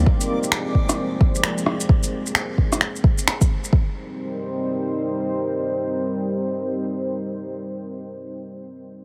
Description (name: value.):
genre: future garage.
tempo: 131 BPM.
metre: 4/4.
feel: swing 63% on 16ths.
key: C minor.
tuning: A4 = 440 Hz.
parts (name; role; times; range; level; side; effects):
deep dark ambient pad; sustained chords; 0.0-6.8 s; F3 to C5; -28 LUFS; equal; chorus, built-in reverb, sidechain pumping.
electronic kick drum; drums; 0.1-3.8 s; none; -20 LUFS; equal; none.
electronic shaker, finger snaps and rim click; drums; 0.2-3.7 s; none; -26 LUFS; equal; none.
room: moderate huge ambient reverb, RT60 4.4 s.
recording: heavily compressed radio sound.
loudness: -22 LUFS.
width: mono.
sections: 0.0-3.7 A section; 3.7-7.4 B section.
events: none.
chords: 0.1 Fm; 1.9 N.C.; 3.7 Cm7.